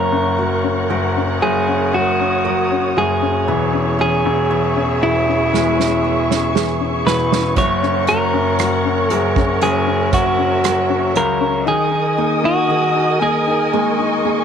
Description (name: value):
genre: pop ballad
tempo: 58 BPM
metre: 4/4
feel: straight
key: unclear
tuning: A4 = 440 Hz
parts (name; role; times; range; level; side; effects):
- clean electric guitar; melody; 0.0-14.4 s; E4 to C#5; -18 LUFS; equal; slapback echo
- warm grand piano; accompaniment; 0.0-14.4 s; D#3 to D#4; -22 LUFS; left 10 dB; none
- warm studio string section; sustained chords; 0.0-14.4 s; G#4 to D#6; -22 LUFS; right 1 dB; none
- nylon-string guitar; arpeggios; 0.0-14.4 s; D#3 to A#4; -26 LUFS; right 15 dB; none
- clear baby grand piano; bass; 0.0-11.6 s; E1 to C#2; -22 LUFS; equal; none
- unplugged drum kit; drums; 5.5-11.4 s; hi-hat, kick drum, rim click, snare drum; -21 LUFS; right 5 dB; none
room: small room ambience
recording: 1960s-style stereo with parts hard left and right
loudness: -14 LUFS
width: side -8 dB against mid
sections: 0.0-14.4 A section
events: drum fill 5.5-7.6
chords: 0.0 F#; 3.5 C#m/E; 7.6 F#; 11.7 D#sus4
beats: 0.38 1.42 2.45 | 3.48 4.51 5.53 6.55 | 7.57 8.60 9.62 10.65 | 11.68 12.71 13.74